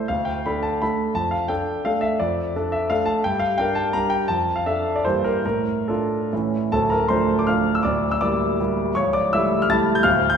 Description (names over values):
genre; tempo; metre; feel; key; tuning
classical, romantic triple-time dance for piano with dotted rhythms; 132-181 BPM; 3/4; rubato; D minor; A4 = 440 Hz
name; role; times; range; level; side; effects
clear concert grand piano; solo; 0.0-10.4 s; C#1 to A6; -19 LUFS; equal; none
room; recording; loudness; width
wet scoring stage reverb, RT60 1.8 s; heard from further back in the room; -19 LUFS; side -7 dB against mid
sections
0.0-6.7 A section; 6.7-10.4 B section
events
none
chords
0.1 D5; 1.1 Dm/F; 3.2 Gm; 4.3 Dm/F; 5.0 Edim/G; 5.4 Dm/A; 6.3 A; 6.7 Dm; 7.8 Em7b5/D; 8.9 A7/C#